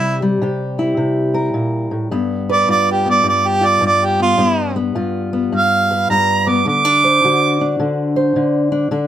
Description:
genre	acoustic country blues, solo or duo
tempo	106 BPM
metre	4/4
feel	swing 65% on 8ths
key	G mixolydian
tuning	A4 = 440 Hz
part	warm harmonica	melody	0.0-7.8 s	E4 to D6	-14 LUFS	right 3 dB	plate reverb
part	fingerpicked steel-string acoustic guitar	accompaniment	0.0-9.1 s	G2 to C5	-17 LUFS	left 1 dB	none
room	light reverb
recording	none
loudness	-14 LUFS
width	side -11 dB against mid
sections	0.0-9.1 A section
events	none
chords	0.0 C7; 2.1 G7; 6.7 D7

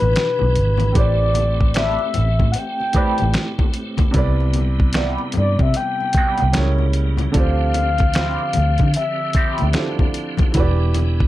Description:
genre	R&B, neo-soul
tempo	75 BPM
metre	4/4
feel	swing 62% on 16ths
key	D dorian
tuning	A4 = 438 Hz
part	mellow horn-like synth lead	melody	0.0-10.1 s	B4 to G5	-22 LUFS	left 2 dB	chorus, plate reverb
part	clear upright piano	accompaniment	0.0-11.3 s	A2 to D5	-26 LUFS	right 3 dB	plate reverb
part	tonewheel organ	sustained chords	0.0-11.3 s	B2 to G4	-29 LUFS	equal	slow rotary speaker, overdrive, chorus vibrato
part	vintage muted fingered electric bass	bass	0.0-11.3 s	E1 to D3	-18 LUFS	equal	none
part	dusty soul sampler-style drum kit	drums	0.0-11.3 s	finger snaps, hi-hat, kick drum, snare drum	-19 LUFS	equal	none
part	congas	percussion	0.1-11.2 s	none	-30 LUFS	left 8 dB	none
part	electric guitar through a small old amp	second line	1.8-9.6 s	F3 to B4	-26 LUFS	right 4 dB	wah, wide subtle chorus, slapback echo, plate reverb
room	light reverb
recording	dark, warm production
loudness	-16 LUFS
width	side -15 dB against mid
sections	0.0-11.3 A section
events	none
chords	0.0 Em7; 0.9 Am11; 4.1 Cmaj7; 6.5 C#dim7; 7.3 Dm11; 10.5 Em7

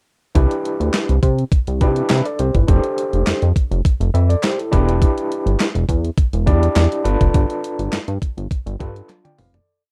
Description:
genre	early-eighties boogie funk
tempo	103 BPM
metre	4/4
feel	straight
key	C major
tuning	A4 = 443 Hz
part	overdriven tine electric piano	accompaniment	0.3-9.8 s	D4 to G5	-24 LUFS	equal	fast tremolo, plate reverb
part	chorused synth bass	bass	0.4-9.6 s	E1 to C3	-19 LUFS	equal	none
part	crisp 8-bit digital drum machine	drums	0.4-9.7 s	handclaps, hi-hat, kick drum, snare drum, toms	-20 LUFS	equal	none
part	group handclap	percussion	0.9-9.2 s	none	-35 LUFS	equal	none
room	light reverb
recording	rough home demo mix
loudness	-18 LUFS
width	mono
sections	0.4-9.7 verse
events	fade-out 7.3-9.7; drum fill 9.1-9.7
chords	0.4 Cmaj9; 2.7 F6; 4.7 Em7; 7.1 G7

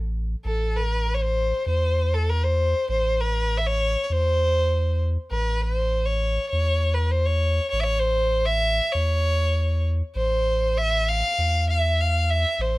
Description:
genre	Arabic maqam ensemble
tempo	99 BPM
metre	4/4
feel	straight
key	A maqam saba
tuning	A4 = 440 Hz
part	warm sub bass	bass	0.0-12.8 s	A1 to E2	-23 LUFS	equal	none
part	rich violin	melody	0.5-12.8 s	A4 to F5	-23 LUFS	equal	none
room	little or no reverb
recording	close, detailed microphones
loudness	-20 LUFS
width	side -19 dB against mid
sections	0.5-12.8 A section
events	none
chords	none

